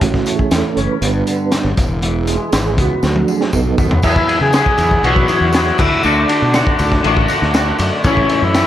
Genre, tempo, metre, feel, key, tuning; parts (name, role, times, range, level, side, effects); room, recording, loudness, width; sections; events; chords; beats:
psychedelic rock; 120 BPM; 4/4; straight; E mixolydian; A4 = 441 Hz
mellow tonewheel organ; sustained chords; 0.0-8.7 s; E3 to D6; -21 LUFS; right 6 dB; chorus vibrato, fast rotary speaker
twangy electric guitar; riff; 0.0-8.7 s; G2 to G#4; -19 LUFS; left 3 dB; rotary speaker
fuzz fingered electric bass; bass; 0.0-8.6 s; E1 to C#3; -19 LUFS; equal; overdrive
crunchy breakbeat drum kit; drums; 0.0-8.7 s; crash cymbal, hi-hat, kick drum, ride cymbal, snare drum, toms; -17 LUFS; equal
tambourine; percussion; 0.0-8.7 s; -35 LUFS; right 4 dB
combo organ; melody; 4.0-8.7 s; C#4 to G#4; -18 LUFS; left 1 dB; analog delay
light reverb, small room ambience; -12 LUFS; side -11 dB against mid
0.0-4.0 A section; 4.0-8.7 B section
tonewheel organ solo 0.0-4.0; drum fill 3.0-4.0
0.0 A; 1.0 G; 1.8 E; 3.0 D; 3.5 B; 4.0 Eadd9; 5.8 D; 8.0 A
| 0.02 0.52 1.02 1.53 | 2.03 2.53 3.03 3.54 | 4.04 4.54 5.04 5.54 | 6.04 6.54 7.04 7.54 | 8.04 8.54